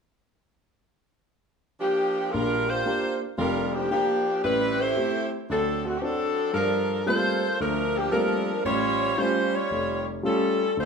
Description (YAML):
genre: jazz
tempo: 114 BPM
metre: 4/4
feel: swing 68% on 8ths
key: Bb major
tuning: A4 = 441 Hz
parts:
  - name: warm saxophone section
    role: melody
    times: 1.8-10.9 s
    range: D3 to C#5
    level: -24 LUFS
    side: equal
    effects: plate reverb
  - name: warm baby grand piano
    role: accompaniment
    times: 2.3-10.9 s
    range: F1 to G4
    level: -28 LUFS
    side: equal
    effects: none
room: wet large studio reverb, RT60 0.9 s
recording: heard from further back in the room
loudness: -23 LUFS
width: side -5 dB against mid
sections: 0.2-2.3 A section; 2.3-10.9 B section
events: none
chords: 0.2 Bb6; 4.4 Am7; 5.5 D7; 6.5 Gm11; 8.6 A7alt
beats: | 0.21 0.74 1.26 1.79 | 2.32 2.85 3.38 3.90 | 4.43 4.96 5.48 6.01 | 6.54 7.07 7.59 8.12 | 8.65 9.18 9.70 10.23 | 10.76